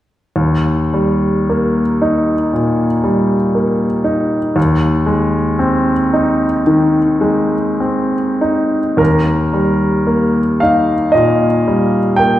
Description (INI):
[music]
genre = classical, romantic nocturne for solo piano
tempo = 46-60 BPM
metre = 4/4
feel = rubato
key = Eb major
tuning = A4 = 440 Hz
[part]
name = bright grand piano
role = solo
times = 0.4-12.4 s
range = Eb2 to G5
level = -12 LUFS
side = equal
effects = none
[sound]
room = wet recital hall reverb, RT60 1.7 s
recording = heard from further back in the room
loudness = -12 LUFS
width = side -13 dB against mid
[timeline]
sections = 0.3-9.0 A section; 9.0-12.4 B section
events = none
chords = 0.3 Eb; 4.6 Ab/Eb; 9.0 Eb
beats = | 0.34 1.49 2.54 3.55 | 4.57 5.59 6.65 7.77 | 8.99 10.07 11.14 12.19